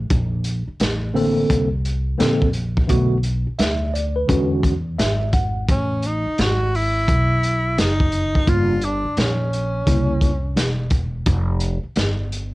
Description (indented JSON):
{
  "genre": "hip hop, jazz-hop",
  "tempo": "86 BPM",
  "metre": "4/4",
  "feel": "swing 64% on 16ths",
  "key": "unclear",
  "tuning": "A4 = 440 Hz",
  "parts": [
    { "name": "upright bass", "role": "bass", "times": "0.0-12.5 s", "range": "E1 to E2", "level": "-22 LUFS", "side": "equal", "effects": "none" },
    { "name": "crunchy breakbeat drum kit", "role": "drums", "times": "0.1-12.5 s", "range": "hi-hat, kick drum, snare drum", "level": "-22 LUFS", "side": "equal", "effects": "none" },
    { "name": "tine electric piano", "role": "accompaniment", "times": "1.1-10.3 s", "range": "C3 to F#5", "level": "-20 LUFS", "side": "equal", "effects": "overdrive, fast stereo tremolo, cassette tape" },
    { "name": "breathy tenor saxophone", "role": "melody", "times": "5.7-10.9 s", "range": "Db4 to F#4", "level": "-23 LUFS", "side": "equal", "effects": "cassette tape" }
  ],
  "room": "moderate booth ambience, RT60 0.2 s",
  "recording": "home recording on cassette",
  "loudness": "-18 LUFS",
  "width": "side -19 dB against mid",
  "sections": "0.0-12.5 A section",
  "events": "tine electric piano fill 4.6-5.7",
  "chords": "0.1 Bbmaj9; 2.9 Bm7; 4.3 E13; 5.7 Asus2; 8.5 Gm7b5; 9.9 C7b9; 11.3 Fsus2"
}